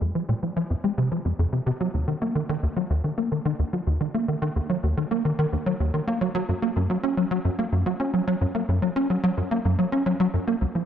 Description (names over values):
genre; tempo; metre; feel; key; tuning
ambient; 109 BPM; 4/4; straight; unclear; A4 = 440 Hz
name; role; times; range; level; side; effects
tight sequencer bass; solo; 0.0-10.8 s; C#2 to Db4; -22 LUFS; equal; ensemble chorus, analog delay
room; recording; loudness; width
wet spring reverb, RT60 2.3 s; echo-heavy mix; -22 LUFS; side -9 dB against mid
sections
0.0-10.6 A section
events
none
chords
none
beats
0.15 0.70 1.25 | 1.80 2.35 2.90 3.46 | 4.00 4.56 5.11 5.66 | 6.21 6.76 7.31 7.86 | 8.41 8.96 9.51 10.06 | 10.61